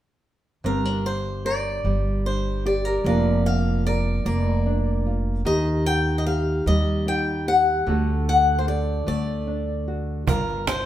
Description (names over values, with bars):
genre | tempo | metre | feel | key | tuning
acoustic folk duo or small band | 50 BPM (dotted quarters) | 6/8 | straight | G minor | A4 = 440 Hz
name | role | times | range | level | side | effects
nylon-string guitar | accompaniment | 0.6-10.9 s | G2 to Bb4 | -26 LUFS | equal | none
upright bass | bass | 0.6-10.9 s | F1 to Eb2 | -24 LUFS | equal | none
picked swing-style acoustic guitar | melody | 0.7-10.9 s | Bb4 to G5 | -25 LUFS | left 2 dB | none
cajon | percussion | 10.3-10.9 s | none | -24 LUFS | right 4 dB | none
room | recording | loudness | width
moderate stone room reverb, RT60 1.3 s | band playing live in one room | -20 LUFS | side -12 dB against mid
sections
0.7-10.9 A section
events
none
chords
0.7 Gm; 3.1 Bb/F; 5.5 Eb; 7.9 D; 10.3 Gm7